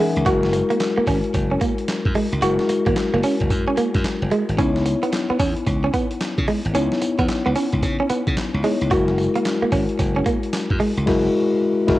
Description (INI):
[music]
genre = R&B, new jack swing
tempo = 111 BPM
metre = 4/4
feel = swing 64% on 16ths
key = unclear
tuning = A4 = 442 Hz
[part]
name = mellow tine electric piano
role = accompaniment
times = 0.0-12.0 s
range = E3 to G#5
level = -22 LUFS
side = left 3 dB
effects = none
[part]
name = direct-recorded clean electric guitar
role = riff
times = 0.0-10.9 s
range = G#3 to F#4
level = -23 LUFS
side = right 3 dB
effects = lush chorus
[part]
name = glassy slap bass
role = bass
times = 0.2-12.0 s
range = F#1 to C#3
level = -23 LUFS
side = equal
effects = none
[part]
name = boom bap sampler-style drum kit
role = drums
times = 0.2-12.0 s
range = crash cymbal, handclaps, hi-hat, kick drum, snare drum, tambourine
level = -25 LUFS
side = equal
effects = cassette tape
[sound]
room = light reverb, digital ambience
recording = home recording on cassette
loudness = -18 LUFS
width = side -16 dB against mid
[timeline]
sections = 0.0-12.0 A section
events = tine electric piano fill 0.0; band accent 11.1-12.0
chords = 0.3 F#9; 4.6 C#m9; 8.9 F#9